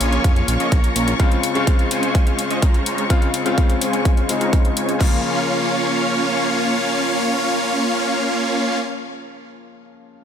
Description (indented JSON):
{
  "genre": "EDM, festival progressive house",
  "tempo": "126 BPM",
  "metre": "4/4",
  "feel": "straight",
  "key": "Bb minor",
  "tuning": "A4 = 440 Hz",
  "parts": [
    { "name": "bright grand piano", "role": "accompaniment", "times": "0.0-10.2 s", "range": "Db3 to F4", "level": "-26 LUFS", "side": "left 4 dB", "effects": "sidechain pumping, ping-pong delay" },
    { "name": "rich studio string section", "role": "sustained chords", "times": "0.0-8.8 s", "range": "Bb3 to Db6", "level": "-27 LUFS", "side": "left 2 dB", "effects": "sidechain pumping" },
    { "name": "supersaw chords", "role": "riff", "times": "0.0-8.8 s", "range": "Ab3 to Bb5", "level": "-20 LUFS", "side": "right 1 dB", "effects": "sidechain pumping, low-pass filter, ping-pong delay" },
    { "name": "fat analog bass", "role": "bass", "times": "0.0-1.1 s", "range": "Bb1 to F2", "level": "-21 LUFS", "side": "equal", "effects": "sidechain pumping" },
    { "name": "big-room dance drum kit", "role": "drums", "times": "0.0-5.1 s", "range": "crash cymbal, hi-hat", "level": "-27 LUFS", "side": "left 3 dB", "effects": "studio reverb" },
    { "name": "electronic kick drum", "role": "drums", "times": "0.2-5.1 s", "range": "none", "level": "-16 LUFS", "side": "equal", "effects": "studio reverb" }
  ],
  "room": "light reverb",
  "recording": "none",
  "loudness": "-16 LUFS",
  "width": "side -8 dB against mid",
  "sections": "0.0-5.0 A section; 5.0-8.8 B section",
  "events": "filter sweep on supersaw synth 0.0-5.0",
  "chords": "0.0 Bbm; 1.2 Dbmaj7; 5.0 Bbm"
}